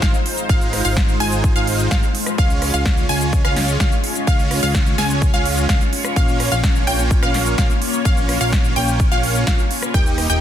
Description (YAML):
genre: EDM, festival progressive house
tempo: 127 BPM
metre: 4/4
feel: straight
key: unclear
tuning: A4 = 444 Hz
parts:
  - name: lush unison pad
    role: sustained chords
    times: 0.0-10.4 s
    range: Ab3 to Eb5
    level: -26 LUFS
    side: left 2 dB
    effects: chorus, phaser, sidechain pumping
  - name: wide unison pluck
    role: arpeggios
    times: 0.0-10.4 s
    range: F5 to Ab5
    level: -24 LUFS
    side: equal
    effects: sidechain pumping, digital delay
  - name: supersaw chords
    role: riff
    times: 0.0-10.4 s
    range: Ab3 to Ab5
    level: -24 LUFS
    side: right 1 dB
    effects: cassette tape, sidechain pumping, digital delay
  - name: fat analog bass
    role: bass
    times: 0.0-10.4 s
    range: Eb1 to Db2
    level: -22 LUFS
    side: equal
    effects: sidechain pumping
  - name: big-room dance drum kit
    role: drums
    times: 0.0-10.4 s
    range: hi-hat, rim click, shaker, snare drum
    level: -24 LUFS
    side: right 1 dB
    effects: overdrive
  - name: electronic kick drum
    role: drums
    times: 0.0-10.0 s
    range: none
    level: -17 LUFS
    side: equal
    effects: overdrive
  - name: impact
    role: sound effects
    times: 0.4-0.5 s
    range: none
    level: barely audible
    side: none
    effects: none
room: digital ambience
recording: dense, heavily limited modern master, faint mains hum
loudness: -15 LUFS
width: side -10 dB against mid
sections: 0.0-10.4 A section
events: impact 0.0-0.5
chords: 0.0 Ab6; 2.4 Db; 6.2 Bbm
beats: 0.02 | 0.49 0.97 1.44 1.91 | 2.38 2.86 3.33 3.80 | 4.27 4.75 5.22 5.69 | 6.16 6.64 7.11 7.58 | 8.05 8.53 9.00 9.47 | 9.94